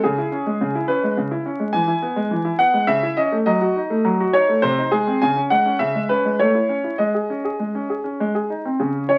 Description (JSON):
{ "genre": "classical-period piano sonatina", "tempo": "103 BPM", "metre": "3/4", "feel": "rubato", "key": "C# minor", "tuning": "A4 = 444 Hz", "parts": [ { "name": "clear grand piano", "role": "solo", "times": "0.0-9.2 s", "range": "B#2 to G#5", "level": "-20 LUFS", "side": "equal", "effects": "none" } ], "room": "moderate studio reverb, RT60 0.8 s", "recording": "very old 78 rpm record, vinyl crackle", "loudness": "-20 LUFS", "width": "mono", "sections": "0.0-8.8 A section", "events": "none", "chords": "0.0 C#m; 1.7 E; 2.9 A/C#; 3.5 D#dim/F#; 4.6 G#/B#; 5.2 C#5; 6.4 A; 7.0 G#sus4; 8.2 G#", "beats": "| 0.04 0.61 1.18 | 1.75 2.31 2.89 | 3.47 4.05 4.63 | 5.22 5.80 6.39 | 7.00 7.60 8.20 | 8.81" }